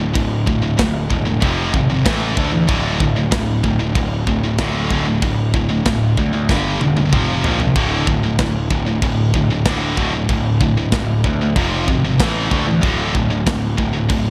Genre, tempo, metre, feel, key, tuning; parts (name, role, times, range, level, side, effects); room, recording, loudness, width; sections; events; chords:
heavy metal; 95 BPM; 4/4; straight; D minor; A4 = 439 Hz
heavy high-gain guitar; riff; 0.0-14.3 s; D2 to A3; -21 LUFS; equal; distortion
fuzz picked electric bass; bass; 0.0-14.3 s; D1 to D2; -24 LUFS; equal; overdrive
tight metal drum kit; drums; 0.2-14.2 s; crash cymbal, kick drum, snare drum, toms; -23 LUFS; equal
light reverb, small room ambience; bright 1980s-style digital production; -17 LUFS; mono
0.0-14.3 A section
drum fill 6.5-7.8
0.0 D5; 1.4 F5; 2.1 A5; 2.7 D5; 6.5 G5; 7.1 F5; 7.8 D5; 11.6 F5; 12.2 A5; 12.8 D5